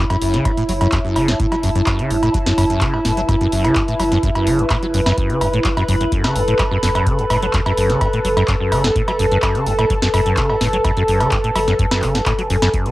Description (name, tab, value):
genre	acid house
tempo	127 BPM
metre	4/4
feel	straight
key	F# minor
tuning	A4 = 440 Hz
part	warm analog pad	sustained chords	0.0-12.9 s	E4 to A4	-21 LUFS	equal	chorus, sidechain pumping
part	acid bass, saw	riff	0.0-12.9 s	F#2 to F#3	-19 LUFS	equal	ensemble chorus, sidechain pumping, analog delay
part	warbly tape-like pad	texture	0.0-12.9 s	B4 to B5	-24 LUFS	equal	chorus, built-in reverb, sidechain pumping
part	booming analog drum machine	drums	0.1-12.9 s	cowbell, handclaps, hi-hat, snare drum	-22 LUFS	equal	cassette tape
part	saturated sub bass	bass	0.2-12.7 s	F#1	-25 LUFS	equal	tube saturation, sidechain pumping
part	electronic kick drum	drums	0.5-12.8 s	none	-22 LUFS	equal	cassette tape
room	moderate studio reverb, RT60 0.5 s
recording	home recording on cassette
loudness	-14 LUFS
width	side -17 dB against mid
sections	0.0-12.9 A section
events	none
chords	0.0 F#m